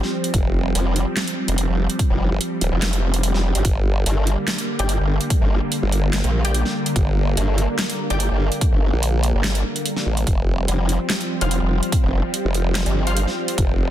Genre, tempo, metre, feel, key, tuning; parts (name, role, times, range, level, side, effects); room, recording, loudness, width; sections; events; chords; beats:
heavy wobble dubstep; 145 BPM; 4/4; half-time; G minor; A4 = 440 Hz
supersaw pad; sustained chords; 0.0-13.9 s; D3 to C4; -25 LUFS; right 1 dB; phaser, sidechain pumping, low-pass filter
dubstep drum kit; drums; 0.0-13.7 s; handclaps, hi-hat, snare drum; -25 LUFS; right 1 dB
formant-sweep wobble bass; bass; 0.3-13.9 s; Eb1 to Bb1; -20 LUFS; equal; chorus, overdrive
electronic kick drum; drums; 0.3-13.7 s; -20 LUFS; equal
formant-sweep wobble bass; bass; 0.8-13.3 s; F1 to Bb1; -20 LUFS; equal; chorus, overdrive
orchestra-hit-like synth stab; stabs; 4.8-8.3, 11.4-13.2 s; F4 to G5; -31 LUFS; left 3 dB; built-in reverb, tape echo
digital ambience; dense, heavily limited modern master; -18 LUFS; side -12 dB against mid
0.0-13.9 A section
kick drops out 2.8-3.6
0.0 Fsus2; 3.6 Gm; 10.3 Fsus2
| 0.34 0.75 1.17 1.58 | 1.99 2.41 2.82 3.23 | 3.65 4.06 4.48 4.89 | 5.30 5.72 6.13 6.54 | 6.96 7.37 7.79 8.20 | 8.61 9.03 9.44 9.86 | 10.27 10.68 11.10 11.51 | 11.92 12.34 12.75 13.16 | 13.58